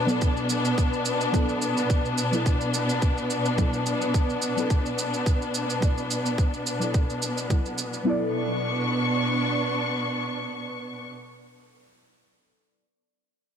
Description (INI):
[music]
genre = organic downtempo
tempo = 107 BPM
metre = 4/4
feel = swing 54% on 16ths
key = B minor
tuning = A4 = 440 Hz
[part]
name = deep mellow chord stab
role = accompaniment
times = 0.0-12.8 s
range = F#3 to F#5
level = -30 LUFS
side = equal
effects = chorus, phaser, cassette tape, sidechain pumping, digital delay
[part]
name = warm studio string section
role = sustained chords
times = 0.0-11.1 s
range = B2 to C#6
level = -25 LUFS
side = left 1 dB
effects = sidechain pumping
[part]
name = shaker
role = drums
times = 0.1-8.0 s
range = none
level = -33 LUFS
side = right 4 dB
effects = none
[part]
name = electronic kick drum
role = drums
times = 0.2-7.6 s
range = none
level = -23 LUFS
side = equal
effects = none
[sound]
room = moderate lush hall reverb, RT60 2.3 s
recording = none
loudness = -23 LUFS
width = side -8 dB against mid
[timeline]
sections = 0.0-8.1 A section; 8.1-10.3 B section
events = none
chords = 0.0 Bm; 8.1 Bmadd9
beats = 0.21 0.78 | 1.34 1.90 2.46 3.02 | 3.58 4.14 4.70 5.26 | 5.82 6.38 6.94 7.50 | 8.06 8.63 9.19 9.75